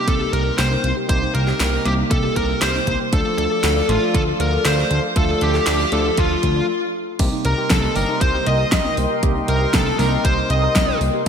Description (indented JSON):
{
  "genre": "synthwave",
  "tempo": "118 BPM",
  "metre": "4/4",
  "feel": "straight",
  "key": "C dorian",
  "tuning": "A4 = 440 Hz",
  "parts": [
    { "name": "smooth overdriven lead guitar", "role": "melody", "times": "0.0-11.0 s", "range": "F4 to Eb5", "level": "-22 LUFS", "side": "equal", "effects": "digital delay" },
    { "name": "warm analog pad", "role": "sustained chords", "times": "0.0-11.2 s", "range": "A4 to D6", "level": "-28 LUFS", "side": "left 1 dB", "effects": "chorus, sidechain pumping" },
    { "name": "bell-like tine electric piano", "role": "stabs", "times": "0.0-11.2 s", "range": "C3 to A4", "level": "-26 LUFS", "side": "right 3 dB", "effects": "medium stereo tremolo" },
    { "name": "soft round pluck", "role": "arpeggios", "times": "0.1-11.3 s", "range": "A3 to D5", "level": "-28 LUFS", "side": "left 3 dB", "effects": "chorus, digital delay" },
    { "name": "fat analog bass", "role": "bass", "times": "0.1-11.1 s", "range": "G1 to D2", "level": "-22 LUFS", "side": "equal", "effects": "sidechain pumping" },
    { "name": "electronic kick drum", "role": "drums", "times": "0.1-10.9 s", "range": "none", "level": "-21 LUFS", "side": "equal", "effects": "none" },
    { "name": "pop drum kit", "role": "drums", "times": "0.1-11.3 s", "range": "crash cymbal, hi-hat, snare drum", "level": "-24 LUFS", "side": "equal", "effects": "high-pass filter on hats, high-pass filter on snare, high-pass filter on toms, high-pass filter on cymbals, high-pass filter on room, gated reverb" },
    { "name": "airy dreamy lead", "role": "second line", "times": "7.5-11.0 s", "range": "A5 to Eb6", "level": "-28 LUFS", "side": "equal", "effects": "chorus" }
  ],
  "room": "wet lush hall reverb, RT60 1.9 s, digital ambience",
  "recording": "bright 1980s-style digital production",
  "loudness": "-16 LUFS",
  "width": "side -7 dB against mid",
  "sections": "0.0-7.2 A section; 7.2-11.3 B section",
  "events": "stop 6.7-7.2",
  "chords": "0.0 Cm7; 3.1 Dm; 7.2 Cm7",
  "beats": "0.08 0.59 | 1.09 1.60 2.11 2.62 | 3.13 3.64 4.14 4.65 | 5.16 5.67 6.18 6.69 | 7.20 7.70 8.21 8.72 | 9.23 9.74 10.25 10.76 | 11.26"
}